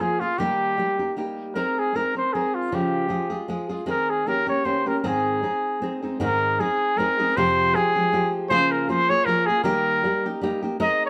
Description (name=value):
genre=mexican folk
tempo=155 BPM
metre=3/4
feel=swing 55% on 8ths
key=Ab major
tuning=A4 = 440 Hz
part: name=mellow trumpet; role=melody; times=0.0-11.1 s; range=F4 to Eb5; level=-24 LUFS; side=equal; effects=plate reverb
part: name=nylon-string guitar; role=accompaniment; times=0.0-11.1 s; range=F2 to Bb4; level=-28 LUFS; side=equal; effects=none
room=moderate studio ambience, RT60 0.5 s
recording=none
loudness=-23 LUFS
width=mono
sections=0.0-6.2 A section; 6.2-11.1 A section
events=none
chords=0.4 Eb; 1.6 Abadd9; 2.7 Db; 3.9 Ab/Eb; 4.3 Eb7; 5.0 Ab; 7.4 Fmadd9; 8.5 Db6; 9.7 Eb